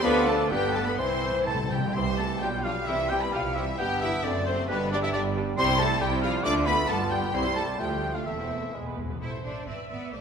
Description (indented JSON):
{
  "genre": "quick classical-period movement for symphony orchestra",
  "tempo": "123-138 BPM",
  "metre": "2/4",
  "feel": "rubato",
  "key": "C major, A minor from 5.6 s",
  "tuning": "A4 = 438 Hz",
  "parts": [
    { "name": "rich studio violin section", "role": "melody", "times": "0.0-10.2 s", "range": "B4 to D6", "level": "-32 LUFS", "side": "left 4 dB", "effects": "none" },
    { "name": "rich studio violin section", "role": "second line", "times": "0.0-10.2 s", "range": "B3 to D5", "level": "-36 LUFS", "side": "left 3 dB", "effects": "none" },
    { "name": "warm clarinet", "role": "second line", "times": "0.0-9.0 s", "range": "B3 to C5", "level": "-36 LUFS", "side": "left 2 dB", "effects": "none" },
    { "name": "warm oboe", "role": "second line", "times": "0.0-8.7 s", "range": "B4 to D6", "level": "-34 LUFS", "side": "right 1 dB", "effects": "none" },
    { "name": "clear bassoon", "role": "accompaniment", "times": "0.0-9.0 s", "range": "D3 to B3", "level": "-33 LUFS", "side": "right 2 dB", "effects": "none" },
    { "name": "warm studio viola section", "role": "accompaniment", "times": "0.0-10.2 s", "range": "F3 to E5", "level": "-35 LUFS", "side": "right 2 dB", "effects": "none" },
    { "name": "mellow French horn section", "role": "sustained chords", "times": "0.0-8.7 s", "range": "B2 to C5", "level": "-34 LUFS", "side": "left 3 dB", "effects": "none" },
    { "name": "clear studio cello section", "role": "bass", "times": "0.0-10.2 s", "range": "C2 to E4", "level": "-34 LUFS", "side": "right 3 dB", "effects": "none" },
    { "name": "rich studio double bass section", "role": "bass", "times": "0.0-10.2 s", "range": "E1 to D2", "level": "-34 LUFS", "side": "right 3 dB", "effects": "none" },
    { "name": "mellow large flute ensemble", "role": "second line", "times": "0.1-8.7 s", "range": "G4 to D6", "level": "-35 LUFS", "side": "equal", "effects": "none" },
    { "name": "timpani", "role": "percussion", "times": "1.0-1.9, 8.7-9.2 s", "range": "E2 to C3", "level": "-33 LUFS", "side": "equal", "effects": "none" }
  ],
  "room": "wet concert hall reverb, RT60 1.8 s",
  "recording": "minimal, uncompressed stereo recording",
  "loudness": "-24 LUFS",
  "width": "side -6 dB against mid",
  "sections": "0.0-2.0 A section; 2.0-9.2 B section",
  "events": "timpani fill 1.0-2.0, 8.7-9.2",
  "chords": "0.1 Dm; 0.5 G; 1.0 C; 2.4 G7/B; 2.9 C; 3.8 G; 4.2 D7/F#; 4.7 G5; 5.6 C; 6.4 Dm; 6.9 G7; 7.3 C; 7.8 Dm; 8.3 Am/E; 8.7 E; 9.2 Am; 9.7 E7"
}